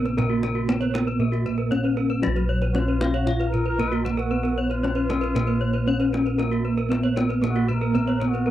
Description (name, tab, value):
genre	Balinese gamelan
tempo	115 BPM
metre	4/4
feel	straight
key	Bb pelog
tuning	A4 = 440 Hz
part	gamelan-type bronze metallophone	melody	0.0-8.5 s	Gb3-20c to F4-30c	-24 LUFS	equal	none
part	gamelan-type bronze metallophone	accompaniment	0.0-2.2, 6.4-8.5 s	Bb3	-32 LUFS	right 8 dB	none
part	gamelan-type bronze metallophone	arpeggios	0.0-8.5 s	Gb4-20c to Db5-30c	-32 LUFS	right 6 dB	none
part	gamelan-type bossed gongs	bass	0.0-8.5 s	Bb1 to Cb5+20c	-26 LUFS	equal	none
part	gamelan-type bronze metallophone	arpeggios	0.1-8.5 s	Gb4-20c to F5-30c	-31 LUFS	left 5 dB	none
part	kendang	percussion	0.1-8.4 s	none	-32 LUFS	left 2 dB	none
part	trumpet with bucket mute	second line	2.7-8.5 s	F4-33c to Cb5+25c	-33 LUFS	left 2 dB	none
room	little or no reverb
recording	dry, close 1970s-style studio recording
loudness	-21 LUFS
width	side -12 dB against mid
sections	0.0-2.2 A section; 2.2-8.5 B section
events	none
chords	none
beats	| 0.17 0.68 1.19 1.71 | 2.23 2.75 3.27 3.79 | 4.31 4.83 5.35 5.87 | 6.39 6.91 7.43 7.95 | 8.47